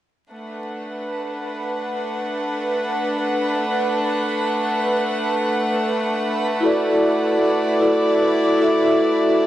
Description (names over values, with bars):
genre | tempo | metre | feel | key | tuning
trip hop | free time | none | none | B minor | A4 = 440 Hz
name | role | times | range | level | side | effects
warm studio violin section | sustained chords | 0.3-9.5 s | A3 to F#5 | -22 LUFS | equal | none
backwards swelling texture | texture | 1.1-9.5 s | B4 | -28 LUFS | right 4 dB | built-in reverb
vibraphone with soft mallets | accompaniment | 6.6-9.5 s | E4 to E5 | -16 LUFS | equal | tremolo, tape echo
room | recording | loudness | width
light reverb, studio ambience | dry, gritty hardware recording, vinyl crackle | -18 LUFS | side -13 dB against mid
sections
0.3-9.5 A section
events
none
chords
0.3 Bm7; 6.6 Dadd9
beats
free time